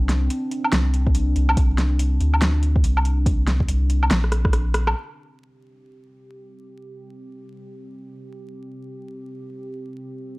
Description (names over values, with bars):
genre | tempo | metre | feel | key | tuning
deep dubstep | 142 BPM | 4/4 | swing 62% on 16ths, half-time | unclear | A4 = 440 Hz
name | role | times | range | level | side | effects
dark analog pad | sustained chords | 0.0-10.4 s | C4 to G4 | -32 LUFS | equal | chorus, phaser
soft dub sub bass | bass | 0.0-4.9 s | Bb1 to D2 | -19 LUFS | equal | transformer saturation
deep house drum kit | drums | 0.1-4.9 s | hi-hat, rim click, snare drum, woodblock | -23 LUFS | equal | low-pass filter on hats, studio reverb, low-pass filter on perc, low-pass filter on snare
electronic kick drum | drums | 1.1-4.5 s | none | -20 LUFS | equal | studio reverb
room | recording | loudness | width
little or no reverb | dry, gritty hardware recording, vinyl crackle | -18 LUFS | side -24 dB against mid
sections
0.0-5.0 A section; 5.0-10.4 B section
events
drum fill 4.1-5.0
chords
0.0 C5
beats
0.30 0.73 1.15 | 1.57 1.99 2.42 2.84 | 3.26 3.68 4.11 4.53 | 4.95 5.37 5.80 6.22 | 6.64 7.06 7.49 7.91 | 8.33 8.75 9.18 9.60 | 10.02